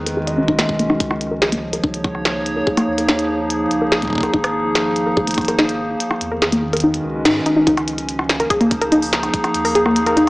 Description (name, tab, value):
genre	IDM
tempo	144 BPM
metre	4/4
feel	straight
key	unclear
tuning	A4 = 441 Hz
part	warbly tape-like pad	sustained chords	0.0-10.3 s	Eb3 to Db5	-20 LUFS	equal	chorus, built-in reverb
part	warm sub bass	bass	0.0-10.3 s	E1 to G#2	-33 LUFS	equal	none
part	warbly dusty pluck	arpeggios	0.1-10.2 s	Bb3 to Eb5	-18 LUFS	equal	chorus, analog delay
part	glitchy drum kit	drums	0.1-10.3 s	hi-hat, rim click, snare drum	-22 LUFS	equal	none
part	electronic kick drum	drums	0.5-9.4 s	none	-22 LUFS	equal	none
room	moderate echo chamber reverb, RT60 1.6 s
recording	dry, gritty hardware recording, cassette tape, small speaker sound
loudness	-15 LUFS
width	side -22 dB against mid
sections	0.0-7.7 A section; 7.7-10.3 B section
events	filter sweep on synth arpeggio sound 0.0-7.7; kick drops out 6.0-7.7; band accent 7.3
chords	0.0 E6; 1.0 Db69; 4.3 Ab69; 6.0 E6; 7.7 Db69; 9.3 Ebsus2